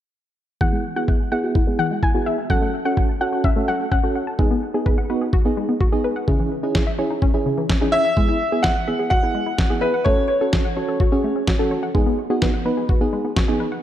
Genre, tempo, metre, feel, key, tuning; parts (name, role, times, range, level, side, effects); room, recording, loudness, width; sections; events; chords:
synth-pop; 127 BPM; 4/4; straight; E major; A4 = 439 Hz
soft round pluck; second line; 0.6-4.2 s; E5 to G#5; -26 LUFS; left 3 dB; chorus, analog delay
mellow FM electric piano; accompaniment; 0.6-13.7 s; B3 to B4; -23 LUFS; right 2 dB; chorus, tremolo, low-pass filter
analog pluck; arpeggios; 0.6-13.8 s; C#3 to A5; -26 LUFS; left 4 dB; chorus, low-pass filter, analog delay
dusty soul sampler-style drum kit; drums; 0.6-13.5 s; kick drum, snare drum; -20 LUFS; equal
clear concert grand piano; melody; 7.9-11.7 s; B4 to F#5; -21 LUFS; left 1 dB; analog delay
moderate lush hall reverb, RT60 2.3 s; dark, warm production; -18 LUFS; side -11 dB against mid
0.6-8.2 A section; 8.2-13.8 B section
filter sweep 0.6-8.2
0.6 Eadd9; 2.5 F#m; 4.4 G#m7; 6.3 C#m; 8.2 Eadd9; 10.1 F#m; 11.9 G#m7